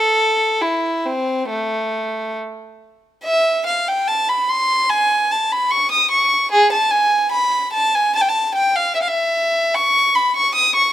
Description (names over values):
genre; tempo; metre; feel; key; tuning
classical, baroque-style suite movement for unaccompanied violin; 67-76 BPM; 4/4; rubato; unclear; A4 = 440 Hz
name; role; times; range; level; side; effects
rich violin; solo; 0.0-10.9 s; A3 to D#6; -15 LUFS; equal; none
room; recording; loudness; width
light reverb; close, detailed microphones; -15 LUFS; side -12 dB against mid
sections
0.0-3.2 A section; 3.2-10.9 B section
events
none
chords
none